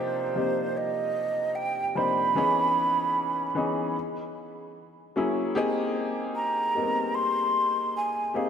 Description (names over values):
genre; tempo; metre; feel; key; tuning
R&B; 75 BPM; 4/4; swing 55% on 16ths; unclear; A4 = 440 Hz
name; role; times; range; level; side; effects
breathy mellow jazz flute; melody; 0.0-8.5 s; C5 to C6; -26 LUFS; right 2 dB; none
warm upright piano; accompaniment; 0.0-8.5 s; C3 to C5; -29 LUFS; left 2 dB; none
room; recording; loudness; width
wet lush hall reverb, RT60 3.0 s; dreamy mix soaked in reverb; -24 LUFS; side -8 dB against mid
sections
0.0-8.5 A section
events
flute solo 0.0-8.5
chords
0.0 Cm11; 2.3 Dbm7; 3.9 Gb9; 5.5 Abmaj9